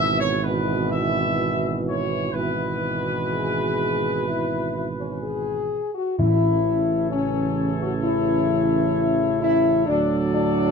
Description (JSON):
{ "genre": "classical", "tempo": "63 BPM", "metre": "4/4", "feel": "straight", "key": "A major", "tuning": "A4 = 441 Hz", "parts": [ { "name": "warm trumpet section", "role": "melody", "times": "0.0-10.7 s", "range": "A4 to E5", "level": "-28 LUFS", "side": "equal", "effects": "none" }, { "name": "mellow French horn section", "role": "sustained chords", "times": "0.0-10.7 s", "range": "B3 to G#4", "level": "-23 LUFS", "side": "left 4 dB", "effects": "none" }, { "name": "mellow trombone section", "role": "sustained chords", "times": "0.0-10.7 s", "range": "A2 to F#3", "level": "-28 LUFS", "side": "right 4 dB", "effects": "none" }, { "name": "dark tuba", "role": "bass", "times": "0.0-10.7 s", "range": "G#1 to D2", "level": "-27 LUFS", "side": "right 6 dB", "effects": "none" }, { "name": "timpani", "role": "percussion", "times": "6.2-7.5 s", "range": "A2", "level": "-25 LUFS", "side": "left 1 dB", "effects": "none" } ], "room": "light reverb", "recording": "close, detailed microphones", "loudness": "-20 LUFS", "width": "side -6 dB against mid", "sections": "0.0-6.2 A section; 6.2-10.7 B section", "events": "none", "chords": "0.0 E/G#; 6.2 A; 9.9 D", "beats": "0.43 1.38 | 2.34 3.31 4.28 5.23 | 6.20 7.13 8.06 8.97 | 9.90" }